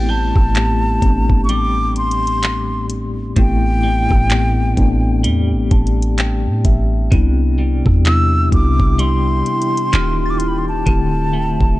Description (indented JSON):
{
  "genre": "contemporary R&B",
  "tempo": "64 BPM",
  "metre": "4/4",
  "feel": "swing 58% on 16ths",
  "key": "A minor",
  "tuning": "A4 = 441 Hz",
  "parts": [
    { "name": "breathy mellow silver concert flute", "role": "melody", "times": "0.0-11.8 s", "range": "G5 to E6", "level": "-21 LUFS", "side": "equal", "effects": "tape echo" },
    { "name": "mellow tine electric piano", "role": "accompaniment", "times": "0.0-11.8 s", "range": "A2 to A5", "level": "-20 LUFS", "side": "left 3 dB", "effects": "medium stereo tremolo" },
    { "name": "clean electric guitar", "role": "arpeggios", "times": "0.0-11.8 s", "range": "A2 to G4", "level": "-25 LUFS", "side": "left 1 dB", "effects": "tremolo" },
    { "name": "clean 808-style bass", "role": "bass", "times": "0.0-11.8 s", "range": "D1 to A2", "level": "-17 LUFS", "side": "equal", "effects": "none" },
    { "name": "soft synth bell", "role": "texture", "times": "0.0-1.3, 9.9-11.4 s", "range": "E#6 to A6", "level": "-34 LUFS", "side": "right 6 dB", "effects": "chorus, phaser, tape echo" },
    { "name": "smooth R&B drum kit", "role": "drums", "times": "0.4-11.8 s", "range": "handclaps, hi-hat, kick drum, rim click", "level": "-17 LUFS", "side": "equal", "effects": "vintage 12-bit sampler grit" },
    { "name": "deep dark ambient pad", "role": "sustained chords", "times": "8.4-11.8 s", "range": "D4 to G5", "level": "-27 LUFS", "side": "right 2 dB", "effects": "chorus, built-in reverb, sidechain pumping" }
  ],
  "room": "little or no reverb",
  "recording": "dark, warm production, nothing above 10.5 kHz",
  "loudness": "-13 LUFS",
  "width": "side -17 dB against mid",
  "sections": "0.0-11.8 A section",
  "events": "tine electric piano fill 5.2-7.1",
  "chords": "0.0 Am7; 7.1 Cmaj7; 9.9 D#9; 10.9 D7sus4"
}